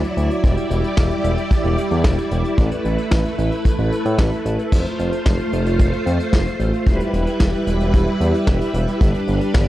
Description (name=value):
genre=synth-pop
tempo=112 BPM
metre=4/4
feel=straight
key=unclear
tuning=A4 = 440 Hz
part: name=string machine, violins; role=sustained chords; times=0.0-9.7 s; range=F#3 to D5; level=-21 LUFS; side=equal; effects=ensemble chorus
part: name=smooth synth bass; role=bass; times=0.0-9.7 s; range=E1 to A2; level=-21 LUFS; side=equal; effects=none
part: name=vintage brush drum kit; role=drums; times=0.0-9.7 s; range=crash cymbal, hi-hat, kick drum, snare drum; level=-18 LUFS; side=equal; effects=none
room=small room ambience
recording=dry, gritty hardware recording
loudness=-16 LUFS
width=side -15 dB against mid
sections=0.0-4.7 A section; 4.7-9.7 B section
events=none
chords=0.4 Em7; 2.6 Asus2; 4.7 F; 6.9 Em; 9.0 G